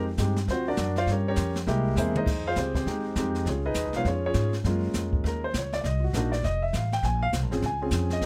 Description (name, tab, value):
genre	jazz piano trio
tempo	202 BPM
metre	4/4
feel	swing 62% on 8ths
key	F minor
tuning	A4 = 441 Hz
part	warm concert grand piano	melody	0.0-8.3 s	Ab3 to Ab5	-30 LUFS	equal	none
part	upright bass	bass	0.0-8.3 s	F1 to Ab2	-30 LUFS	equal	none
part	jazz brush drum kit	drums	0.2-8.3 s	brushed snare drum, crash cymbal, hi-hat, kick drum, snare drum, toms	-35 LUFS	equal	none
room	little or no reverb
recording	close, detailed microphones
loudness	-27 LUFS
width	mono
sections	0.0-2.3 A section; 2.3-8.3 A section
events	grand piano solo 0.0-8.3; drum fill 2.0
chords	0.5 D7alt; 1.1 Gm7b5; 1.7 C7b13; 2.3 Fm9; 3.5 Db9; 4.6 Gbmaj9; 5.8 Cm7b5; 6.4 F; 7.0 Bbm9